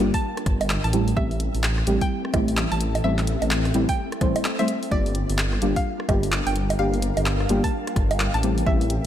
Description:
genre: UK garage, two-step garage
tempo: 128 BPM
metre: 4/4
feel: swing 62% on 16ths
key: G dorian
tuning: A4 = 442 Hz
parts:
  - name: deep mellow chord stab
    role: stabs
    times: 0.0-8.8 s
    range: G3 to C5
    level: -26 LUFS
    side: equal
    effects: chorus, tape echo
  - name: dark detuned saw bass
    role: bass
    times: 0.0-9.0 s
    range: G1 to A1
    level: -24 LUFS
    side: equal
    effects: none
  - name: ethereal airy pad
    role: texture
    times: 0.0-9.1 s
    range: C4 to G5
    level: -33 LUFS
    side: left 2 dB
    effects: ensemble chorus, built-in reverb, sidechain pumping
  - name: string-like resonator pluck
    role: melody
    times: 0.1-8.9 s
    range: D5 to A5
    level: -32 LUFS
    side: equal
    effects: chorus, tape echo
  - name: electronic kick drum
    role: drums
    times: 0.1-8.8 s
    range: none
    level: -24 LUFS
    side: equal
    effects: overdrive
  - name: punchy analog drum machine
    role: drums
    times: 0.1-9.0 s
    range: bongos, handclaps, hi-hat, rim click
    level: -28 LUFS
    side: right 1 dB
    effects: overdrive
room: light reverb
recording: none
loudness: -20 LUFS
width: side -10 dB against mid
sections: 0.0-9.1 A section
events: filter sweep on synth stab 0.0-9.1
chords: 0.0 Gm7; 0.9 Am7; 4.9 Gm7; 8.4 Am7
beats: 0.23 0.70 | 1.17 1.64 2.10 2.57 | 3.04 3.51 3.98 4.45 | 4.92 5.38 5.85 6.32 | 6.79 7.26 7.73 8.20 | 8.67

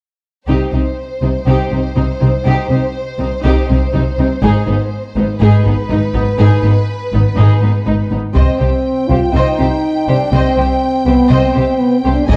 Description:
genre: cinematic, epic orchestral film score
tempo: 122 BPM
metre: 4/4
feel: straight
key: C harmonic minor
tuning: A4 = 440 Hz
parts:
  - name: warm symphonic violin section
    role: melody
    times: 0.5-12.4 s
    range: Cb5 to Ab5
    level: -25 LUFS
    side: equal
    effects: none
  - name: warm symphonic violin section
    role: second line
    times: 0.5-12.4 s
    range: Cb4 to Eb5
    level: -26 LUFS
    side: equal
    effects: none
  - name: warm symphonic viola section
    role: accompaniment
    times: 0.5-12.4 s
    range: Eb4 to C5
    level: -25 LUFS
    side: equal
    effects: none
  - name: clear symphonic double bass section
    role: bass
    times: 0.5-12.4 s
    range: Ab1 to C2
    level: -18 LUFS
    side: equal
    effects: none
  - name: warm symphonic cello section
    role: bass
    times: 0.5-12.4 s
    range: Ab2 to C3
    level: -19 LUFS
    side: equal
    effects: none
  - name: mellow French horn section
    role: sustained chords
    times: 8.3-12.4 s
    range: B3 to F4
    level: -17 LUFS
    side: equal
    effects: none
  - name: taiko ensemble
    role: drums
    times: 8.4-9.3, 12.3-12.4 s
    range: none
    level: -17 LUFS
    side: equal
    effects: none
room: moderate recital hall reverb, RT60 1.6 s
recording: dark, warm production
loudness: -14 LUFS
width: mono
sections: 0.5-8.4 A section; 8.4-12.4 B section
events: none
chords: 0.5 Cm; 4.4 Abm; 8.4 Cm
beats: | 0.48 0.97 1.47 1.96 | 2.46 2.95 3.44 3.93 | 4.43 4.92 5.41 5.90 | 6.39 6.89 7.38 7.87 | 8.36 8.86 9.35 9.84 | 10.33 10.82 11.31 11.80 | 12.29

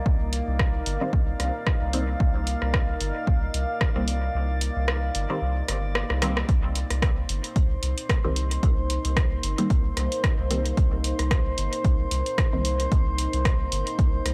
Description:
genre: dub techno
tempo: 112 BPM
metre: 4/4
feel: swing 56% on 16ths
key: C minor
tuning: A4 = 442 Hz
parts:
  - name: deep dark ambient pad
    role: sustained chords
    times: 0.0-14.3 s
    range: Bb3 to F5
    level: -35 LUFS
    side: equal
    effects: chorus, built-in reverb, sidechain pumping
  - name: drifting glass-harmonics texture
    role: texture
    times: 0.0-14.3 s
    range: C5 to D5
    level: -39 LUFS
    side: equal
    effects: chorus, built-in reverb, sidechain pumping
  - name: soft dub sub bass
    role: bass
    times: 0.1-14.3 s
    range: G1 to C2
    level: -30 LUFS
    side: equal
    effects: sidechain pumping
  - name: electronic kick drum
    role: drums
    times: 0.1-14.1 s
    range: none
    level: -25 LUFS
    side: equal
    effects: none
  - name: punchy analog drum machine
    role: drums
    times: 0.3-14.3 s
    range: hi-hat, rim click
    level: -32 LUFS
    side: equal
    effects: dub echo
  - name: filtered dub chord stab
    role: stabs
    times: 1.0-12.6 s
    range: Eb3 to C4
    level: -35 LUFS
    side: equal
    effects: phaser, sidechain pumping, dub echo
room: digital ambience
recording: dry, gritty hardware recording, transformer saturation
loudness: -25 LUFS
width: mono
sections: 0.0-6.5 A section; 6.5-14.3 A section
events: kick drops out 4.3-6.5; drum fill 6.1-6.5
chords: 0.0 Cm7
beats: | 0.06 0.59 1.13 1.67 | 2.20 2.74 3.27 3.81 | 4.34 4.88 5.42 5.95 | 6.49 7.02 7.56 8.10 | 8.63 9.17 9.70 10.24 | 10.77 11.31 11.85 12.38 | 12.92 13.45 13.99

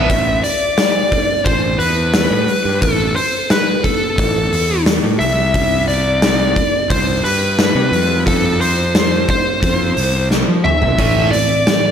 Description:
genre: quiet-loud alternative rock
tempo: 88 BPM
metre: 4/4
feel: straight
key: A minor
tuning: A4 = 439 Hz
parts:
  - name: bluesy overdriven lead guitar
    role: melody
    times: 0.0-11.9 s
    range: A4 to E5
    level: -17 LUFS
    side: left 1 dB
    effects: distortion, slapback echo
  - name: distorted electric guitar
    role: riff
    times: 0.0-0.1, 11.0-11.9 s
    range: A2 to A3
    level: -22 LUFS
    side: right 9 dB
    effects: overdrive, slapback echo
  - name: fuzz fingered electric bass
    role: bass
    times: 0.0-11.3 s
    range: A1 to F3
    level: -19 LUFS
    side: equal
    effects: overdrive
  - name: oversized low-tuned drum kit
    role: drums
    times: 0.1-11.8 s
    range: hi-hat, kick drum, snare drum, toms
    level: -17 LUFS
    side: equal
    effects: none
  - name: mellow electric guitar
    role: arpeggios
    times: 11.0-11.9 s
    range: A2 to C4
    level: -22 LUFS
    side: equal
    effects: ensemble chorus
room: moderate lush hall reverb, RT60 2.1 s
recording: big arena sound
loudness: -13 LUFS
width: side -8 dB against mid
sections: 0.1-11.9 A section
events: drum fill 10.3-11.0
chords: 0.1 Asus2; 5.2 C; 7.9 F5; 11.0 Am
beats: | 0.10 0.78 1.46 2.14 | 2.82 3.50 4.18 4.86 | 5.54 6.22 6.90 7.58 | 8.27 8.94 9.62 10.30 | 10.98 11.66

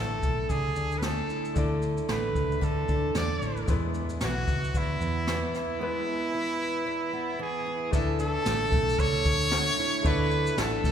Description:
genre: acoustic pop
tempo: 113 BPM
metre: 4/4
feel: swing 60% on 16ths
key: unclear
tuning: A4 = 440 Hz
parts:
  - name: brilliant trumpet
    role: melody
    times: 0.0-10.9 s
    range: E4 to D5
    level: -30 LUFS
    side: equal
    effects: none
  - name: bright grand piano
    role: accompaniment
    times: 0.0-10.9 s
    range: G#3 to E5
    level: -39 LUFS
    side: left 5 dB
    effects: none
  - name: picked steel-string acoustic guitar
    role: accompaniment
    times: 0.0-10.9 s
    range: E2 to E4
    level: -32 LUFS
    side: right 3 dB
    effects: none
  - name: hollow-body short-scale fingered electric bass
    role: bass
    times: 0.0-10.9 s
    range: A1 to E2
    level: -31 LUFS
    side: left 1 dB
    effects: none
  - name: jazz brush drum kit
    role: drums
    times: 0.2-10.9 s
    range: kick drum, shaker, snare drum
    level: -31 LUFS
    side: equal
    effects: none
room: wet church reverb, RT60 2.5 s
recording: recorded in a church or concert hall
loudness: -25 LUFS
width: side -8 dB against mid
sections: 0.0-7.9 A section; 7.9-10.9 B section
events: none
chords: 0.0 Dsus2; 3.7 E; 7.9 Dsus2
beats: 0.50 1.03 | 1.56 2.09 2.62 3.15 | 3.68 4.21 4.75 5.28 | 5.81 6.34 6.87 7.40 | 7.93 8.46 8.99 9.52 | 10.05 10.58

